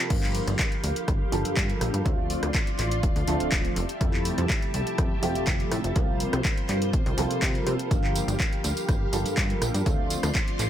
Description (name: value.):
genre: filtered disco house.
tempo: 123 BPM.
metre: 4/4.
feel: straight.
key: G dorian.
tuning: A4 = 441 Hz.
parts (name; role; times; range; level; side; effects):
warm concert grand piano; accompaniment; 0.0-10.7 s; C3 to A4; -30 LUFS; right 2 dB; phaser, sidechain pumping, low-pass filter.
string machine, full ensemble; sustained chords; 0.0-10.7 s; F4 to C6; -34 LUFS; left 1 dB; ensemble chorus, sidechain pumping, low-pass filter.
plucky analog bass; bass; 0.1-10.7 s; D1 to C3; -29 LUFS; equal; sidechain pumping, low-pass filter.
electronic kick drum; drums; 0.1-10.4 s; none; -26 LUFS; equal; none.
punchy analog drum machine; drums; 0.1-10.7 s; crash cymbal, handclaps, hi-hat, rim click, tambourine; -31 LUFS; equal; sidechain pumping on hats, sidechain pumping on cymbals, sidechain pumping on perc.
room: light reverb, digital ambience.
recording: none.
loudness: -23 LUFS.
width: side -10 dB against mid.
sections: 0.0-10.7 A section.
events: filter sweep 0.0-10.7.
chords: 0.1 Gm7; 2.1 Dm7; 3.8 Fmaj9; 6.0 C7sus4; 7.9 Gm7; 9.9 Dm7.